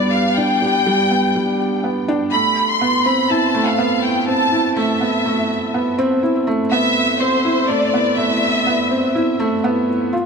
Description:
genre	electronica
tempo	123 BPM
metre	4/4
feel	straight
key	A minor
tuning	A4 = 440 Hz
part	warm studio violin section	melody	0.0-9.2 s	C5 to C6	-18 LUFS	left 1 dB	none
part	felt-muted upright piano	riff	0.0-10.3 s	G3 to G4	-17 LUFS	right 1 dB	ping-pong delay
room	wet huge ambient reverb, RT60 4.7 s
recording	none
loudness	-15 LUFS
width	side -5 dB against mid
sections	0.0-10.3 A section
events	none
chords	0.0 G; 2.3 Amadd9

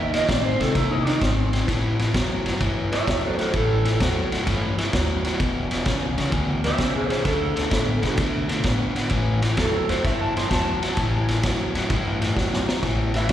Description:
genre	electric blues shuffle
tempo	129 BPM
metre	4/4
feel	swing 68% on 8ths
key	unclear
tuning	A4 = 441 Hz
part	electric slide guitar	melody	0.0-13.3 s	D#4 to C6	-26 LUFS	right 2 dB	slapback echo
part	overdriven electric guitar	riff	0.0-13.3 s	E2 to C4	-25 LUFS	left 3 dB	slapback echo
part	upright bass	bass	0.0-13.3 s	E1 to C3	-26 LUFS	equal	none
part	vintage drum kit	drums	0.1-13.3 s	kick drum, ride cymbal, snare drum	-25 LUFS	right 1 dB	none
room	light reverb, studio reverb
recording	live gig heard through the venue's PA, recital hall reverb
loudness	-20 LUFS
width	side -11 dB against mid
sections	0.0-12.8 A section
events	drum fill 12.4-12.8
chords	0.0 D#5; 1.7 A5; 5.4 E5; 7.3 D5; 9.1 A5

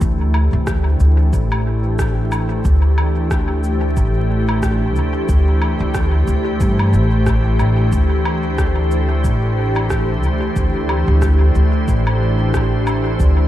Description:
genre	ambient dub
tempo	91 BPM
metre	4/4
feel	swing 57% on 16ths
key	unclear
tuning	A4 = 438 Hz
part	soft additive organ-like pad	sustained chords	0.0-13.5 s	E3 to C5	-20 LUFS	left 1 dB	ensemble chorus, built-in reverb
part	upright bass	bass	0.0-13.5 s	A1 to G2	-16 LUFS	equal	tube saturation
part	electronic cabasa, woodblock and rim click	drums	0.0-13.3 s	none	-28 LUFS	equal	dub echo
part	electronic kick drum	drums	0.0-13.3 s	none	-20 LUFS	equal	none
room	moderate lush hall reverb, RT60 1.6 s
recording	dreamy mix soaked in reverb, vinyl crackle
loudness	-14 LUFS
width	side -13 dB against mid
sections	0.0-13.5 A section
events	none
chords	0.0 D7sus2

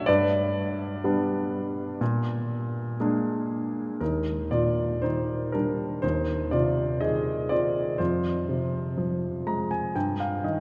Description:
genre	classical, lyrical solo piano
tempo	61 BPM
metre	4/4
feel	rubato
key	Eb major from 4.0 s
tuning	A4 = 444 Hz
part	clear concert grand piano	solo	0.0-10.6 s	Eb2 to Bb5	-27 LUFS	equal	none
room	wet cathedral reverb, RT60 5.3 s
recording	in a vast, echoing space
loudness	-27 LUFS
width	mono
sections	0.0-4.0 A section; 4.0-10.6 B section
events	grand piano fill 9.0-10.6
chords	0.1 G; 2.0 Bb7; 4.0 Eb; 6.0 Ab/Eb; 8.0 Fm; 10.0 Eb/G

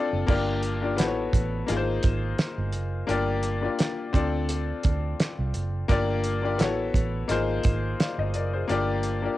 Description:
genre	lush 1970s-style soul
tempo	86 BPM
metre	4/4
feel	swing 54% on 16ths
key	G minor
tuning	A4 = 440 Hz
part	clear grand piano	accompaniment	0.0-9.4 s	Bb3 to F5	-27 LUFS	left 4 dB	cassette tape
part	vintage muted fingered electric bass	bass	0.1-9.3 s	F#1 to D2	-28 LUFS	right 2 dB	none
part	cloth-damped thuddy drum kit	drums	0.3-9.2 s	crash cymbal, hi-hat, kick drum, snare drum	-26 LUFS	right 2 dB	cassette tape
room	light reverb, small room ambience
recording	home recording on cassette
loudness	-24 LUFS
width	side -15 dB against mid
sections	0.3-9.4 A section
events	none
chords	0.3 Gm7; 1.0 A69; 1.7 Ab69; 3.1 Gm7; 4.1 Dm7; 5.9 Gm7; 6.6 A69; 7.3 Ab69; 8.7 Gm7

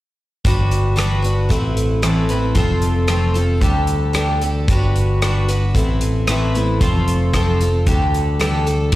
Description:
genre	folk rock and heartland rock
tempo	113 BPM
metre	4/4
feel	straight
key	G major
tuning	A4 = 438 Hz
part	picked twelve-string acoustic guitar	accompaniment	0.4-9.0 s	A2 to B4	-20 LUFS	equal	slapback echo
part	natural country drum kit	drums	0.4-9.0 s	crash cymbal, hi-hat, kick drum, rim click	-20 LUFS	equal	none
part	modern bright picked electric bass	bass	0.5-9.0 s	F1 to D2	-18 LUFS	equal	none
room	little or no reverb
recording	live gig heard through the venue's PA, recital hall reverb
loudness	-15 LUFS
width	side -16 dB against mid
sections	0.4-8.9 A section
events	none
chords	0.4 Gmaj7; 1.5 Amadd9; 2.6 F; 3.6 Dsus4; 4.7 Gmaj7; 5.7 Amadd9; 6.8 F; 7.9 Dsus4

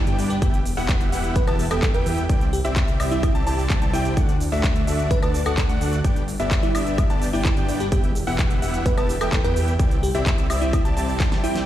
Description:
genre	EDM, festival progressive house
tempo	128 BPM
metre	4/4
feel	straight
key	unclear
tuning	A4 = 440 Hz
part	bell-like FM electric piano	melody	0.0-11.7 s	E4 to B4	-29 LUFS	right 2 dB	chorus, phaser, dub echo
part	warm concert grand piano	arpeggios	0.0-11.6 s	E5 to A5	-31 LUFS	left 2 dB	sidechain pumping, dub echo
part	dense compressed supersaw	riff	0.0-11.6 s	A3 to A5	-27 LUFS	equal	sidechain pumping, dub echo
part	wide detuned saw bass	bass	0.0-11.6 s	E1 to G2	-25 LUFS	equal	chorus, sidechain pumping
part	big-room dance drum kit	drums	0.1-11.7 s	handclaps, hi-hat, shaker, snare drum, woodblock	-30 LUFS	equal	none
part	electronic kick drum	drums	0.4-11.3 s	none	-21 LUFS	equal	none
room	digital ambience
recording	played on a big sound system in a bare room, large studio reverb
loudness	-19 LUFS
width	side -12 dB against mid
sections	0.0-11.7 A section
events	drop 0.0-11.7; drum fill 11.2-11.7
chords	0.4 Em; 2.3 Cadd9; 4.2 D; 6.0 G; 7.9 Em; 9.8 Cadd9

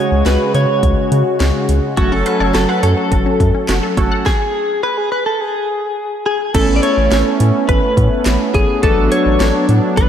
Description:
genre	synth-pop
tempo	105 BPM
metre	4/4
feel	straight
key	A major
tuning	A4 = 440 Hz
part	direct-recorded clean electric guitar	melody	0.0-10.1 s	F#4 to D5	-18 LUFS	left 1 dB	analog chorus, analog delay
part	warm analog keys	accompaniment	0.0-10.1 s	G#3 to A4	-22 LUFS	right 3 dB	chorus
part	brassy analog pad	sustained chords	0.0-10.1 s	C#3 to A4	-18 LUFS	equal	chorus
part	round analog bass	bass	0.1-10.1 s	F#1 to C#3	-16 LUFS	equal	none
part	house drum kit	drums	0.3-10.1 s	crash cymbal, handclaps, hi-hat, kick drum, snare drum	-19 LUFS	equal	none
part	resonant blip pluck	arpeggios	2.0-4.2 s	A3 to F#5	-24 LUFS	left 2 dB	chorus, phaser, analog delay
room	moderate lush hall reverb, RT60 2.2 s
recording	dreamy mix soaked in reverb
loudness	-12 LUFS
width	side -9 dB against mid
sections	0.0-6.5 A section; 6.5-10.1 B section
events	stop 4.3-6.5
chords	0.0 C#sus4; 2.0 F#m; 4.3 N.C.; 6.5 Aadd9; 8.8 D6/A

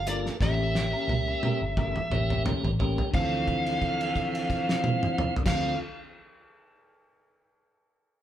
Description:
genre	straight-eighth soul blues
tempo	88 BPM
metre	4/4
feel	swing 55% on 16ths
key	D minor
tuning	A4 = 440 Hz
part	smooth overdriven lead guitar	melody	0.0-5.8 s	D5 to F5	-31 LUFS	right 1 dB	none
part	vintage muted fingered electric bass	bass	0.0-5.7 s	G1 to D2	-31 LUFS	equal	none
part	tonewheel organ	accompaniment	0.1-5.7 s	E3 to A4	-32 LUFS	right 2 dB	slow rotary speaker
part	electric guitar through a small old amp	stabs	0.1-5.8 s	D3 to Bb4	-36 LUFS	left 5 dB	none
part	cloth-damped thuddy drum kit	drums	0.1-5.6 s	crash cymbal, hi-hat, kick drum, snare drum, toms	-30 LUFS	right 1 dB	none
room	moderate large studio reverb, RT60 1.2 s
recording	band playing live in one room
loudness	-24 LUFS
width	side -11 dB against mid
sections	0.0-3.1 A section; 3.1-5.9 B section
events	drum fill 0.4-3.1; held note 3.1-5.5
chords	0.4 A7b9; 3.1 Dm7

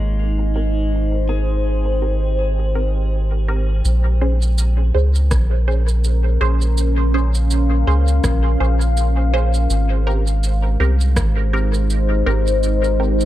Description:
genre	ambient dub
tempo	82 BPM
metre	4/4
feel	swing 56% on 16ths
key	Bb dorian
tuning	A4 = 441 Hz
part	deep dark ambient pad	sustained chords	0.0-13.3 s	Ab3 to G5	-24 LUFS	left 2 dB	chorus, built-in reverb
part	pedal steel guitar	arpeggios	0.0-3.8 s	Ab3 to F5	-33 LUFS	left 2 dB	tape echo
part	filtered dub chord stab	stabs	0.0-13.2 s	C4 to C5	-27 LUFS	right 2 dB	phaser, dub echo
part	soft dub sub bass	bass	0.0-13.3 s	Ab1 to Db2	-16 LUFS	equal	none
part	electronic shaker and rim click	drums	3.8-13.3 s	none	-29 LUFS	right 2 dB	dub echo
part	electronic kick drum	drums	5.3-11.3 s	none	-22 LUFS	equal	overdrive
room	little or no reverb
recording	echo-heavy mix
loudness	-15 LUFS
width	side -14 dB against mid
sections	0.0-3.8 A section; 3.8-13.3 B section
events	filter sweep on pedal steel guitar 0.0-3.8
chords	0.0 Abmaj7; 3.8 Bbm7; 9.7 Abmaj7

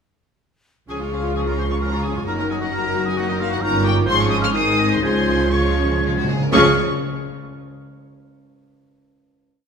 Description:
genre	quick classical-period movement for symphony orchestra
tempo	119-133 BPM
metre	3/4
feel	rubato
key	Db major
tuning	A4 = 442 Hz
part	rich chamber violin section	melody	0.9-6.8 s	Eb5 to F6	-24 LUFS	left 3 dB	none
part	hollow concert flute	second line	0.9-6.8 s	Db6 to C7	-28 LUFS	left 3 dB	none
part	mellow cor anglais	second line	0.9-6.7 s	Db4 to F5	-28 LUFS	right 3 dB	none
part	rich chamber violin section	second line	0.9-6.8 s	C4 to Db5	-29 LUFS	left 1 dB	none
part	warm clarinet	second line	0.9-6.7 s	Eb4 to Ab4	-27 LUFS	right 1 dB	none
part	rich chamber viola section	accompaniment	0.9-6.8 s	Eb3 to F4	-27 LUFS	equal	none
part	dark French horn section	sustained chords	0.9-6.7 s	Ab3 to Ab4	-26 LUFS	left 2 dB	none
part	rich chamber double bass section	bass	0.9-6.8 s	Gb1 to Db2	-24 LUFS	right 2 dB	none
part	rich studio cello section	bass	0.9-6.8 s	Gb2 to Db3	-26 LUFS	right 3 dB	none
part	timpani	percussion	5.0-6.8 s	Db3	-27 LUFS	left 1 dB	none
room	wet scoring stage reverb, RT60 2.0 s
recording	minimal, uncompressed stereo recording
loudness	-17 LUFS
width	side -6 dB against mid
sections	0.9-6.5 A section; 6.5-8.0 final chord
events	timpani fill 5.0-6.5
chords	0.9 Db; 2.3 Ebm/Gb; 3.6 Eb7/G; 4.1 Db/Ab; 4.5 Ab; 5.0 Db

